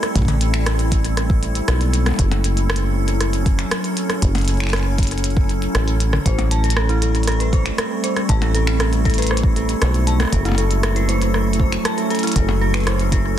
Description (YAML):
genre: IDM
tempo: 118 BPM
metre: 4/4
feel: straight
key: unclear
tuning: A4 = 441 Hz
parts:
  - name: icy glass pad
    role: sustained chords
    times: 0.0-13.4 s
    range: F#3 to A4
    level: -23 LUFS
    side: right 1 dB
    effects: chorus, built-in reverb, sidechain pumping
  - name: glitchy drum kit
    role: drums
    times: 0.0-13.2 s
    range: finger snaps, hi-hat, percussion blips, rim click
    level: -24 LUFS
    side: equal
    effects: soft clipping on snare, ping-pong delay
  - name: deep acid bass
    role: bass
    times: 0.2-13.4 s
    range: F#1 to B1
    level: -19 LUFS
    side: equal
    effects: none
  - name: electronic kick drum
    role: drums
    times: 0.2-13.2 s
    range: none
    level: -19 LUFS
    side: equal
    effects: none
  - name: dark detuned synth bell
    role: arpeggios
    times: 6.3-13.2 s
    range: E4 to A5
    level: -25 LUFS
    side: left 2 dB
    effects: chorus, phaser, ping-pong delay
room: light reverb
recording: dense, heavily limited modern master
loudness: -16 LUFS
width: side -11 dB against mid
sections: 0.0-13.4 A section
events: none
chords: 0.0 Am7; 2.2 F#m7; 6.3 Am7; 10.3 F#m7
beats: | 0.15 0.66 1.17 1.68 | 2.19 2.70 3.21 3.71 | 4.22 4.73 5.24 5.75 | 6.26 6.76 7.27 7.78 | 8.29 8.80 9.31 9.82 | 10.32 10.83 11.34 11.85 | 12.36 12.87 13.38